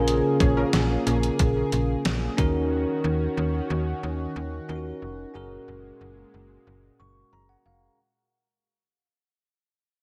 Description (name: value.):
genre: 1980s-style pop.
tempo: 91 BPM.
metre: 4/4.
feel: straight.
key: unclear.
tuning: A4 = 442 Hz.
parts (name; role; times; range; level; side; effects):
bell-like tine electric piano; accompaniment; 0.0-8.0 s; Db4 to Db6; -31 LUFS; equal; slapback echo.
warm analog pad; sustained chords; 0.0-8.0 s; Bb2 to Ab4; -33 LUFS; equal; chorus.
slap-like FM bass; bass; 0.0-7.9 s; F1 to Eb2; -30 LUFS; equal; none.
clean 12-bit digital drum machine; drums; 0.1-2.5 s; hi-hat, kick drum, snare drum; -28 LUFS; equal; none.
funky polysynth comp; stabs; 0.4-1.2 s; F3 to Bb4; -35 LUFS; equal; chorus, delay, slapback echo.
room: wet lush hall reverb, RT60 2.2 s.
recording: big arena sound.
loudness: -25 LUFS.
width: mono.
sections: 0.0-8.0 A section.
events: fade-out 0.0-8.0; tine electric piano fill 6.7-8.0.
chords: 0.0 Bbm7; 2.4 Ebm7; 5.3 Gbadd9.